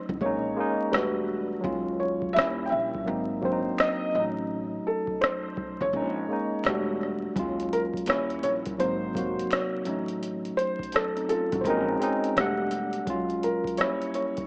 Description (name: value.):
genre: lo-fi hip hop.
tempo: 84 BPM.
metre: 4/4.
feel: swing 65% on 16ths.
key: unclear.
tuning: A4 = 440 Hz.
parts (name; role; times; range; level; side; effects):
tine electric piano; accompaniment; 0.0-14.5 s; C3 to F#5; -32 LUFS; equal; low-pass filter.
upright bass; bass; 0.1-13.0 s; E1 to Eb2; -39 LUFS; equal; none.
booming analog drum machine; drums; 0.1-14.5 s; hi-hat, kick drum, rim click; -34 LUFS; equal; none.
felt-muted upright piano; melody; 0.2-14.5 s; G4 to G5; -32 LUFS; equal; low-pass filter.
finger snaps; percussion; 0.9-9.7 s; none; -46 LUFS; equal; none.
room: moderate spring reverb, RT60 2.5 s.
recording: worn, warbling old tape, cassette tape, vinyl crackle, warbly pitch drift, small speaker sound.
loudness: -28 LUFS.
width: mono.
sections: 0.0-14.5 A section.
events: break 0.0-7.4; kick muted 5.9-7.4.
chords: 0.2 Bbm7; 0.9 Em11; 1.6 Ebm11; 2.4 Eb7b9; 3.1 Ab9; 4.1 Gbm6/A; 5.9 Bbm7; 6.6 Em11; 7.4 Ebm11; 8.1 Eb7b9; 8.8 Ab9; 9.9 F7b9b13/A; 11.6 Bbm11; 12.4 Em11; 13.1 Gbmaj9; 13.8 Gdim7.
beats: 0.21 0.93 | 1.64 2.36 3.07 3.79 | 4.50 5.21 5.93 6.64 | 7.36 8.07 8.79 9.50 | 10.21 10.93 11.64 12.36 | 13.07 13.79.